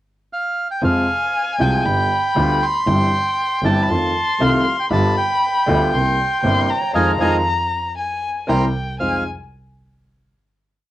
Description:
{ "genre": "tango", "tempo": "118 BPM", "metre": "4/4", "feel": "rubato", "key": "F minor", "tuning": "A4 = 440 Hz", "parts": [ { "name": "bandoneon", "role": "melody", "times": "0.3-9.2 s", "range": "Eb5 to C6", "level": "-20 LUFS", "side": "right 2 dB", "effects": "cassette tape" }, { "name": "dark violin", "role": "second line", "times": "0.8-9.2 s", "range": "G5 to C6", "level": "-22 LUFS", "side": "left 3 dB", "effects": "cassette tape" }, { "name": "warm upright piano", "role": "accompaniment", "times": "0.8-9.2 s", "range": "G1 to G4", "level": "-20 LUFS", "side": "equal", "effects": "cassette tape" }, { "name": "dark double bass", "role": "bass", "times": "0.8-9.2 s", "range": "G1 to F2", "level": "-23 LUFS", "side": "right 1 dB", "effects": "none" }, { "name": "hollow-body jazz guitar", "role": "second line", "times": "5.7-9.2 s", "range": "Bb4 to F5", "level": "-28 LUFS", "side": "right 1 dB", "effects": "cassette tape" } ], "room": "moderate small room reverb, RT60 0.5 s", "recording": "home recording on cassette", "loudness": "-16 LUFS", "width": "side -14 dB against mid", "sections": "0.0-0.8 pickup bar; 0.8-9.0 A section; 9.0-10.9 final chord", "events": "band accent 7.0-9.0", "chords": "0.0 N.C.; 0.8 Fm; 1.8 G7; 2.9 C/G; 3.9 F7; 4.9 G7; 5.9 C7; 7.0 Fm7; 8.5 C7; 9.0 Fm7" }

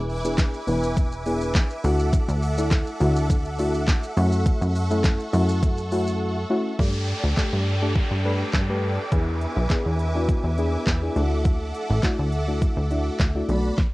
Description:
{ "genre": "dance-pop", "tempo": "103 BPM", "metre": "4/4", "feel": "straight", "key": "unclear", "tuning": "A4 = 436 Hz", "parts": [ { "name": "deep mellow chord stab", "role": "accompaniment", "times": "0.0-13.7 s", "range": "A3 to B4", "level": "-27 LUFS", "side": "left 1 dB", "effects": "chorus, sidechain pumping, cassette tape" }, { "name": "supersaw chords", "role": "sustained chords", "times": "0.0-13.8 s", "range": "A4 to D6", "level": "-31 LUFS", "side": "right 1 dB", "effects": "sidechain pumping, cassette tape" }, { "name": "plucky analog bass", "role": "bass", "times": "0.0-13.7 s", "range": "E1 to G2", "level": "-24 LUFS", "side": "equal", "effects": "sidechain pumping" }, { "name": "pop drum kit", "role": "drums", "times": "0.1-13.9 s", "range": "handclaps, hi-hat, kick drum, shaker, snare drum", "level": "-22 LUFS", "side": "equal", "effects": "cassette tape" }, { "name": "downlifter", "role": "sound effects", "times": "6.8-11.4 s", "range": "none", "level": "-34 LUFS", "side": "equal", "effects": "none" } ], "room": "little or no reverb", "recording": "home recording on cassette", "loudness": "-20 LUFS", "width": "side -20 dB against mid", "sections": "0.0-6.8 A section; 6.8-13.9 B section", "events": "silent gap 6.2-6.8", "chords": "0.0 E7; 1.8 Dadd9; 4.2 F#m7; 6.8 Gsus2; 9.1 E7; 11.2 Dadd9" }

